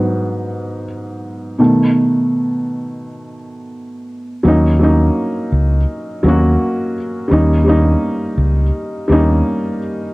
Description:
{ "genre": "lo-fi hip hop", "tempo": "84 BPM", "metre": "4/4", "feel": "swing 61% on 16ths", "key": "unclear", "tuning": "A4 = 440 Hz", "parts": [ { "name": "felt-muted upright piano", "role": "accompaniment", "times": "0.0-10.1 s", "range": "Ab2 to Gb4", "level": "-16 LUFS", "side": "equal", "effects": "cassette tape, low-pass filter" }, { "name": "fingered electric bass", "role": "bass", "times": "4.4-9.4 s", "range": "Db2 to Eb2", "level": "-13 LUFS", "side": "equal", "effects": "none" } ], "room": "moderate studio reverb, RT60 0.6 s", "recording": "cassette tape", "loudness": "-13 LUFS", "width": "side -22 dB against mid", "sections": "0.0-4.5 A section; 4.5-10.1 B section", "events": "felt piano solo 0.0-4.5", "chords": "0.0 Abm7; 1.6 B7; 4.5 Ebm7; 7.3 Eb7" }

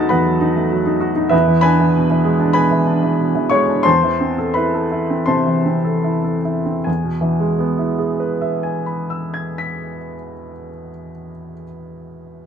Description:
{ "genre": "classical, virtuoso piano study", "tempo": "71-102 BPM", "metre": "4/4", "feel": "rubato", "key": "E major", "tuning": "A4 = 440 Hz", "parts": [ { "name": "warm baby grand piano", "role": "solo", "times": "0.0-12.4 s", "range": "E2 to B6", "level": "-16 LUFS", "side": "equal", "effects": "none" } ], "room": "light reverb", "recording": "none", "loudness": "-15 LUFS", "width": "side -7 dB against mid", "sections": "0.0-6.9 A section; 6.9-10.2 B section", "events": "slowing down 0.1-6.9", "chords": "0.0 B7/E; 1.3 E7; 3.9 Am/E; 6.9 E" }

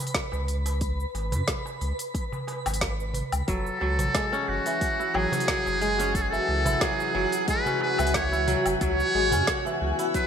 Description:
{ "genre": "organic downtempo", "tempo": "90 BPM", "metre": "4/4", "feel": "swing 54% on 16ths", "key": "F# minor", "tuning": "A4 = 443 Hz", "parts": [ { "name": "deep house drum kit", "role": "drums", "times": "0.0-10.3 s", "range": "cabasa, hi-hat, snare drum, woodblock", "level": "-31 LUFS", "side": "left 1 dB", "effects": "studio reverb" }, { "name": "twinkling granular texture", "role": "texture", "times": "0.0-10.3 s", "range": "F#4 to B5", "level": "-35 LUFS", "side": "right 1 dB", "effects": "built-in reverb, shimmer reverb" }, { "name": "electronic kick drum", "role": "drums", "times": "0.1-10.3 s", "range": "none", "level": "-31 LUFS", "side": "equal", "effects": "studio reverb" }, { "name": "warm sub bass", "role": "bass", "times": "0.3-9.9 s", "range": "F#1 to F#2", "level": "-29 LUFS", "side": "equal", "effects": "none" }, { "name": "darbuka", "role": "percussion", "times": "0.3-9.8 s", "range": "none", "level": "-36 LUFS", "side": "right 3 dB", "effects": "none" }, { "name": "trumpet with metal mute", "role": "melody", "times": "3.5-10.3 s", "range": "F#4 to C#5", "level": "-26 LUFS", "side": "right 1 dB", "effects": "digital delay, shimmer reverb" }, { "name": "warbly tape-like pad", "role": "sustained chords", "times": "4.5-10.3 s", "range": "C#3 to G#5", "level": "-31 LUFS", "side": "left 2 dB", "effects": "chorus, built-in reverb, phaser, sidechain pumping, shimmer reverb" }, { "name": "kora", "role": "arpeggios", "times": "3.5-10.3 s", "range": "E3 to E4", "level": "-30 LUFS", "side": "equal", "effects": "ping-pong delay, shimmer reverb" } ], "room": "moderate echo chamber reverb, RT60 2.1 s", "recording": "none", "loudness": "-23 LUFS", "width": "side -7 dB against mid", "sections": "0.0-10.3 A section", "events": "none", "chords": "0.0 C#7(no3); 3.5 F#m9; 8.8 C#7sus4" }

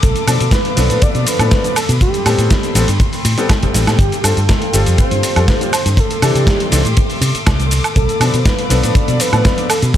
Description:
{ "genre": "nu-disco, nu disco", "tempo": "121 BPM", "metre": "4/4", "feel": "straight", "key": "unclear", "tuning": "A4 = 445 Hz", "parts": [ { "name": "wide unison lead", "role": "melody", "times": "0.0-10.0 s", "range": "G4 to D5", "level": "-21 LUFS", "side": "right 1 dB", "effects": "dub echo" }, { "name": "dark studio string section", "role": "sustained chords", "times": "0.0-10.0 s", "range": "A4 to D6", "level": "-25 LUFS", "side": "left 2 dB", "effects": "sidechain pumping" }, { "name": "fingered electric bass with an envelope filter", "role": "bass", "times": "0.0-9.9 s", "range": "G1 to C3", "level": "-15 LUFS", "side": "equal", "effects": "sidechain pumping" }, { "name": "dusty soul sampler-style drum kit", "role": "drums", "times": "0.0-10.0 s", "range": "hi-hat, ride cymbal, shaker, snare drum, woodblock", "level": "-19 LUFS", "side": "right 1 dB", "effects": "none" }, { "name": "kick drum", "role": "drums", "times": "0.0-10.0 s", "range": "none", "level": "-16 LUFS", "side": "equal", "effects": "none" }, { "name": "clear grand piano", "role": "accompaniment", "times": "0.3-9.7 s", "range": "E3 to D5", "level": "-21 LUFS", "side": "left 4 dB", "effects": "sidechain pumping" } ], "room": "studio ambience", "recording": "none", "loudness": "-11 LUFS", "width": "side -11 dB against mid", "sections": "0.0-10.0 A section", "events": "drum fill 3.7", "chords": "0.0 Bm7b5; 2.0 Am9; 4.0 G9sus4; 6.0 C69; 8.0 Bm7b5" }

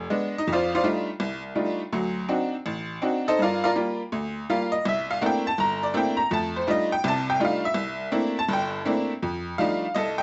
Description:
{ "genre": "solo jazz", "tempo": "164 BPM", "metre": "4/4", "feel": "swing 65% on 8ths", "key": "F mixolydian", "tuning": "A4 = 440 Hz", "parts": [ { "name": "tack piano", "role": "solo", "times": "0.0-10.2 s", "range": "G1 to Bb5", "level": "-26 LUFS", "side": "equal", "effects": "none" } ], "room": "moderate large studio reverb, RT60 0.8 s", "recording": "worn, warbling old tape, cassette tape, warbly pitch drift, nothing above 7.9 kHz", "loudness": "-26 LUFS", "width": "mono", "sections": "0.0-9.2 A section; 9.2-10.2 B section", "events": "honky-tonk piano solo 0.0-9.2", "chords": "0.5 F13; 1.9 D7b9; 3.4 Gm7; 4.8 C13; 6.3 F13; 7.8 C13; 9.2 F13" }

